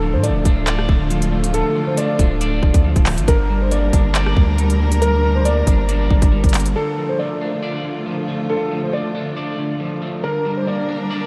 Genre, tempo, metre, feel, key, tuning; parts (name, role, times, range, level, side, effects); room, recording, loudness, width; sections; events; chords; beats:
hip hop, drill; 138 BPM; 4/4; half-time; D minor; A4 = 442 Hz
dark concert grand piano; melody; 0.0-11.3 s; A4 to D5; -26 LUFS; equal; analog chorus, diffuse ambient delay
electric guitar at the edge of break-up; accompaniment; 0.0-11.3 s; D3 to D5; -26 LUFS; equal; subtle chorus
dark chamber string section; sustained chords; 0.0-11.3 s; D3 to Bb4; -28 LUFS; equal
long sustained 808-style bass; bass; 0.0-6.7 s; D1 to A2; -21 LUFS; equal
drill drum kit; drums; 0.2-6.8 s; handclaps, hi-hat, kick drum, rim click; -19 LUFS; equal
moderate huge ambient reverb, RT60 7.9 s; dreamy mix soaked in reverb, lossy compression artefacts; -18 LUFS; mono
0.0-6.8 A section; 6.8-11.3 A section
0.0 Dm; 3.3 Gm; 6.8 Dm; 10.2 Gm
0.24 0.67 1.10 | 1.54 1.98 2.41 2.85 | 3.28 3.71 4.15 4.58 | 5.02 5.45 5.89 6.32 | 6.76 7.19 7.63 8.06 | 8.50 8.93 9.37 9.80 | 10.24 10.67 11.11